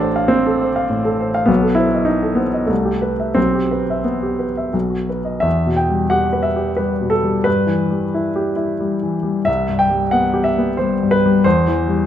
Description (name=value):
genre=classical, romantic character piece for solo piano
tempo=83-102 BPM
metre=3/4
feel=rubato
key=E minor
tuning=A4 = 440 Hz
part: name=warm baby grand piano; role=solo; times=0.0-12.1 s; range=A1 to G5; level=-15 LUFS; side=equal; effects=none
room=moderate large studio reverb, RT60 1.3 s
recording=dark, warm production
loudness=-15 LUFS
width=side -10 dB against mid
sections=0.0-5.5 A section; 5.5-12.1 B section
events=none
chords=0.0 F/A; 1.5 B7b9; 2.7 Cmaj7; 3.4 Em/B; 4.7 B; 5.5 Em; 7.5 Em/G; 9.5 C5; 11.4 C/E